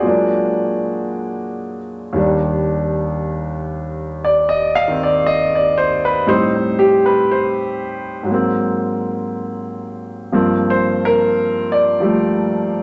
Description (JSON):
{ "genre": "solo jazz", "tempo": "59 BPM", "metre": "4/4", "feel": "swing 66% on 8ths, rubato", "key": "unclear", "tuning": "A4 = 439 Hz", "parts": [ { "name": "clear concert grand piano", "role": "solo", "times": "0.0-12.8 s", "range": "Eb2 to F5", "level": "-18 LUFS", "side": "equal", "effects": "none" } ], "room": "wet studio reverb, RT60 0.9 s", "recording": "nothing above 8.0 kHz", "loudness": "-18 LUFS", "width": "mono", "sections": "0.0-2.2 A section; 2.2-12.8 B section", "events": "grand piano solo 2.2-12.8", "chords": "0.0 Bbaug7; 2.2 Ebmaj7; 6.3 Am7b5; 8.3 Ab9; 10.3 Gm11" }